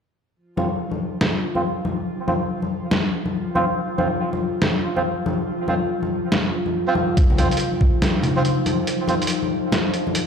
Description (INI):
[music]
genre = deep dubstep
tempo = 141 BPM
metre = 4/4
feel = swing 62% on 16ths, half-time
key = unclear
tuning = A4 = 439 Hz
[part]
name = overtone-sweeping drone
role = sustained chords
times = 0.8-10.3 s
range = F3 to F4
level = -26 LUFS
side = equal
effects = chorus, built-in reverb
[part]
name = melodica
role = stabs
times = 0.6-9.1 s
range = C4 to C5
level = -26 LUFS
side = right 2 dB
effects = low-pass filter, dub echo
[part]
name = congas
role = percussion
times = 0.6-10.1 s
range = none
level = -24 LUFS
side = left 4 dB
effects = dub echo
[part]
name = trip hop sampler-style drum kit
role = drums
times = 1.2-10.3 s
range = hi-hat, snare drum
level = -24 LUFS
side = right 1 dB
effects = none
[part]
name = electronic kick drum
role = drums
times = 7.2-7.9 s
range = none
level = -16 LUFS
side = equal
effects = overdrive
[sound]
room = moderate echo chamber reverb, RT60 1.6 s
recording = played on a big sound system in a bare room, large studio reverb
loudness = -19 LUFS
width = side -6 dB against mid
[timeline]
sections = 0.4-10.3 A section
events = filter sweep on melodica 0.4-10.3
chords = 0.4 F5